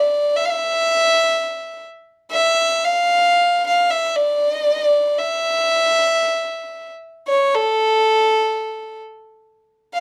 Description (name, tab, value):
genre	Persian modal ensemble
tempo	free time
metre	none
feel	none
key	unclear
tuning	A4 = 438 Hz
part	rich violin	solo	0.0-10.0 s	A4 to F5	-18 LUFS	equal	none
room	wet studio reverb, RT60 0.6 s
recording	dark, warm production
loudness	-18 LUFS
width	mono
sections	0.0-9.6 A section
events	none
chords	none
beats	free time